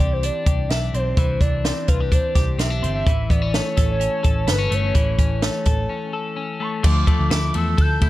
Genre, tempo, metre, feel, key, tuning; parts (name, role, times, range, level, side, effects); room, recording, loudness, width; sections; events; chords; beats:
jangly indie pop; 127 BPM; 4/4; straight; D dorian; A4 = 438 Hz
warbly nostalgic lead; melody; 0.0-8.1 s; B4 to G6; -26 LUFS; right 1 dB; chorus, slapback echo
twelve-string electric guitar; arpeggios; 0.0-8.1 s; E3 to A4; -26 LUFS; left 5 dB
vintage muted picked electric bass; bass; 0.0-8.1 s; G1 to E2; -22 LUFS; equal
compact cocktail drum kit; drums; 0.0-8.1 s; crash cymbal, hi-hat, kick drum, ride cymbal, snare drum; -20 LUFS; equal
small room ambience; -18 LUFS; side -16 dB against mid
0.0-6.8 A section; 6.8-8.1 B section
break 5.9-6.8
0.0 Cadd9; 3.1 A; 6.8 Dmadd9
0.23 0.70 | 1.17 1.65 2.12 2.59 | 3.06 3.54 4.01 4.48 | 4.95 5.42 5.90 6.37 | 6.84 7.31 7.78